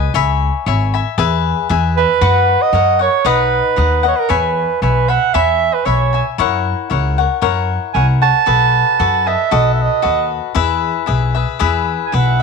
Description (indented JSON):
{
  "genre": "mexican folk, mariachi",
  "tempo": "115 BPM",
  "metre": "2/4",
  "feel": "straight",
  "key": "B major, E major from 4.3 s",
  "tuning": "A4 = 440 Hz",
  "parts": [
    { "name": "cavaquinho", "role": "accompaniment", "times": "0.0-12.4 s", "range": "D#4 to B5", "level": "-17 LUFS", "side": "left 12 dB", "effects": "none" },
    { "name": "upright bass", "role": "bass", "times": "0.0-12.4 s", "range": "G#1 to F#2", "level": "-17 LUFS", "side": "left 1 dB", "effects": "tube saturation" },
    { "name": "mellow soprano saxophone", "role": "melody", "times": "2.0-12.4 s", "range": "A#4 to A5", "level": "-15 LUFS", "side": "right 11 dB", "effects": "none" }
  ],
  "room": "light reverb",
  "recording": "1960s-style stereo with parts hard left and right",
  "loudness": "-12 LUFS",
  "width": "side -5 dB against mid",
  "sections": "0.0-4.3 A section; 4.3-12.4 B section",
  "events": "none",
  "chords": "0.2 C#m7; 1.2 E; 2.2 B/F#; 2.7 F#; 3.3 B; 4.3 E6; 6.4 F#7; 8.5 B7; 10.6 E",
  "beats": "| 0.15 0.67 | 1.19 1.71 | 2.22 2.74 | 3.25 3.78 | 4.30 4.82 | 5.34 5.86 | 6.38 6.90 | 7.42 7.95 | 8.47 9.00 | 9.52 10.04 | 10.56 11.09 | 11.61 12.14"
}